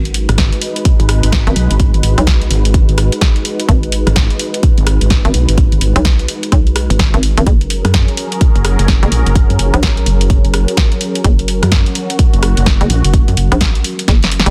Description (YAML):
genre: bass house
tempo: 127 BPM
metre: 4/4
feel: swing 62% on 16ths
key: G# minor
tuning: A4 = 440 Hz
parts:
  - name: sweeping resonant pad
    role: sustained chords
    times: 0.0-14.5 s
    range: F#3 to B4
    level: -24 LUFS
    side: equal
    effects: chorus, sidechain pumping
  - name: hollow knocking FM bass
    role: bass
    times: 0.0-14.5 s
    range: F#1 to B1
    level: -17 LUFS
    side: equal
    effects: overdrive, sidechain pumping
  - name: house drum kit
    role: drums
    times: 0.1-14.5 s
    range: hi-hat, rim click, snare drum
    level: -20 LUFS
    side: equal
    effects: studio ambience
  - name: pulsing pluck wobble bass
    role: bass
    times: 0.3-13.5 s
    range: F#1 to F#2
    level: -15 LUFS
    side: equal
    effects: chorus, tube saturation, sidechain pumping
  - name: electronic kick drum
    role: drums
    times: 0.4-14.2 s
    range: none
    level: -14 LUFS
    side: equal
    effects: studio ambience
room: digital ambience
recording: dense, heavily limited modern master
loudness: -12 LUFS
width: mono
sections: 0.0-14.5 A section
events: drum fill 14.1-14.5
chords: 0.0 G#m7; 7.5 F#add9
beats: 0.38 0.85 1.32 | 1.80 2.27 2.74 3.21 | 3.69 4.16 4.63 5.10 | 5.58 6.05 6.52 6.99 | 7.47 7.94 8.41 8.88 | 9.36 9.83 10.30 10.77 | 11.24 11.72 12.19 12.66 | 13.13 13.61 14.08